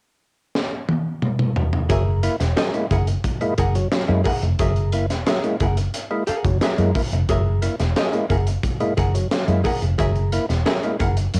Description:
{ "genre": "funk", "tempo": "89 BPM", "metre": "4/4", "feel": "straight", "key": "F# mixolydian", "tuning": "A4 = 439 Hz", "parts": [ { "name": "crunchy breakbeat drum kit", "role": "drums", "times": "0.6-11.4 s", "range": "hi-hat, kick drum, snare drum, toms", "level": "-26 LUFS", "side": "equal", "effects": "cassette tape" }, { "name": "archtop guitar, miked and amplified", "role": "accompaniment", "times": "1.9-11.2 s", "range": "G#4 to F#5", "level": "-28 LUFS", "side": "equal", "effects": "none" }, { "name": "percussive tonewheel organ", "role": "stabs", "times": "1.9-11.1 s", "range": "F#3 to E4", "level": "-27 LUFS", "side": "equal", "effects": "overdrive, chorus vibrato, slow rotary speaker" }, { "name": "vintage muted fingered electric bass", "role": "bass", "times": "1.9-11.4 s", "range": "E1 to F#2", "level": "-23 LUFS", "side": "equal", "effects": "none" } ], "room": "light reverb", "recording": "home recording on cassette", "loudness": "-21 LUFS", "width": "mono", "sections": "0.0-1.9 A section; 1.9-11.4 B section", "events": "drum fill 0.6-1.9", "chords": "0.0 N.C.; 1.9 F#9" }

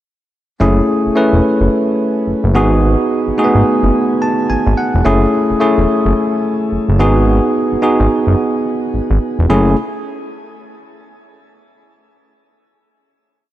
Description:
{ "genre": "R&B", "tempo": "108 BPM", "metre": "4/4", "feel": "swing 61% on 16ths", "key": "F# dorian", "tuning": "A4 = 440 Hz", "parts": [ { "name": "bell-like tine electric piano", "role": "accompaniment", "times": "0.6-9.8 s", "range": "A3 to A5", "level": "-13 LUFS", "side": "equal", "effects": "shimmer reverb" }, { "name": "fat analog bass", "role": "bass", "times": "0.6-9.8 s", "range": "E1 to G#1", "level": "-13 LUFS", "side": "equal", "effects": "none" } ], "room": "moderate lush hall reverb, RT60 2.8 s", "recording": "none", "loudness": "-11 LUFS", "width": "side -13 dB against mid", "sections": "0.6-9.5 verse; 9.5-11.7 final chord", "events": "tine electric piano fill 3.9-5.1", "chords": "0.6 F#m7; 2.6 G#m7; 5.1 F#m7; 7.0 G#m7; 9.5 F#m7" }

